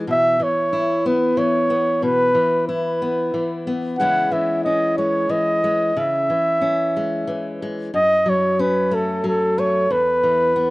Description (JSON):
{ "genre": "folk", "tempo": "92 BPM", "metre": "3/4", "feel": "straight", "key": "unclear", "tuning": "A4 = 444 Hz", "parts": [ { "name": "fingerpicked steel-string acoustic guitar", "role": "accompaniment", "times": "0.0-10.7 s", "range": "E2 to E4", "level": "-23 LUFS", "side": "left 2 dB", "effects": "none" }, { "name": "mellow flugelhorn", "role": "melody", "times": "0.1-10.7 s", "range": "A4 to F#5", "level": "-18 LUFS", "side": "equal", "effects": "none" } ], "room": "small room ambience", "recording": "rough home demo mix, nothing above 10.8 kHz", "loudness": "-17 LUFS", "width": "side -20 dB against mid", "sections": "0.0-10.7 A section", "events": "none", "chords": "0.1 Bsus4; 4.0 C#m; 7.9 F#m; 9.9 E5" }